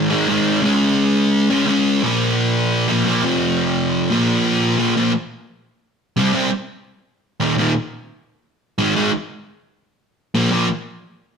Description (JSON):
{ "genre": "punk", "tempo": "173 BPM", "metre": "4/4", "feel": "straight", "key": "unclear", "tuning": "A4 = 440 Hz", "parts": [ { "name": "sludgy distorted guitar", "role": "solo", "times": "0.0-10.7 s", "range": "Eb2 to Db4", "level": "-16 LUFS", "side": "equal", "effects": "overdrive" } ], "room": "moderate stone room reverb, RT60 1.1 s", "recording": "rough rehearsal-room recording, warm saturation", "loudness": "-16 LUFS", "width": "side -6 dB against mid", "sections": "0.0-4.8 A section; 4.8-11.4 B section", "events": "none", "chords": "0.0 Ab5; 0.6 Db5; 2.0 Bb5; 3.2 F5; 4.1 Bb5; 6.2 C5; 7.4 Eb5; 8.8 Ab5; 10.4 Bb5", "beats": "0.29 | 0.64 0.99 1.33 1.68 | 2.02 2.37 2.71 3.06 | 3.41 3.75 4.10 4.45 | 4.79 5.14 5.49 5.84 | 6.18 6.53 6.88 7.23 | 7.58 7.92 8.27 8.62 | 8.97 9.32 9.66 10.01 | 10.36" }